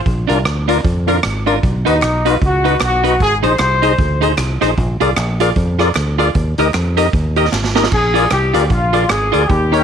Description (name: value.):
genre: ska.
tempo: 153 BPM.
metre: 4/4.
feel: swing 59% on 8ths.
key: unclear.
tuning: A4 = 440 Hz.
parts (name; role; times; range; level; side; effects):
fingered electric bass; bass; 0.1-9.8 s; Ab1 to F2; -18 LUFS; equal; none.
street-band drum kit; drums; 0.1-9.8 s; crash cymbal, hi-hat, kick drum, rim click, snare drum; -20 LUFS; right 2 dB; none.
clean electric guitar; accompaniment; 0.3-9.8 s; D4 to Eb5; -20 LUFS; right 12 dB; none.
tonewheel organ; stabs; 0.3-9.8 s; D4 to D#5; -19 LUFS; left 12 dB; slow rotary speaker.
mellow horn section; melody; 1.9-4.2, 7.9-9.8 s; D#4 to C5; -16 LUFS; left 1 dB; none.
group handclap; percussion; 2.0-9.2 s; none; -30 LUFS; left 11 dB; none.
room: light reverb.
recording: 1960s-style stereo with parts hard left and right.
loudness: -12 LUFS.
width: side -8 dB against mid.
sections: 0.0-7.9 A section; 7.9-9.8 B section.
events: drum fill 7.5-7.9.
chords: 0.1 Bb; 1.6 B; 3.2 Ab; 4.8 Bb7; 6.4 Eb; 7.9 Bb7.